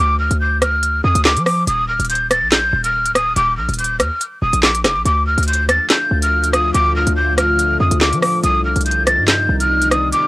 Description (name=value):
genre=hip hop, drill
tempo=142 BPM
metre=4/4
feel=half-time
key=D phrygian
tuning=A4 = 440 Hz
part: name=breathy mellow jazz flute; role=melody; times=0.0-10.3 s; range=D6 to A6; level=-16 LUFS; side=equal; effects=low-pass filter, cassette tape, tape echo
part: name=concert harp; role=accompaniment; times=0.0-0.8 s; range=none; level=barely audible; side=none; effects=none
part: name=hard-hitting 808-style bass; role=bass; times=0.0-10.1 s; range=D1 to F3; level=-19 LUFS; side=equal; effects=none
part: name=drill drum kit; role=drums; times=0.3-10.2 s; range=handclaps, hi-hat, rim click, snare drum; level=-16 LUFS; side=equal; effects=none
part: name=deep dark ambient pad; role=sustained chords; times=5.7-10.3 s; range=C3 to F4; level=-23 LUFS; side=left 2 dB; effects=chorus, built-in reverb, cassette tape
room=little or no reverb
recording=home recording on cassette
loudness=-13 LUFS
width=side -20 dB against mid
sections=0.0-10.3 A section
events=kick muted 10.1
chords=0.0 Dm; 1.7 Eb5; 5.1 Dm; 8.4 Cm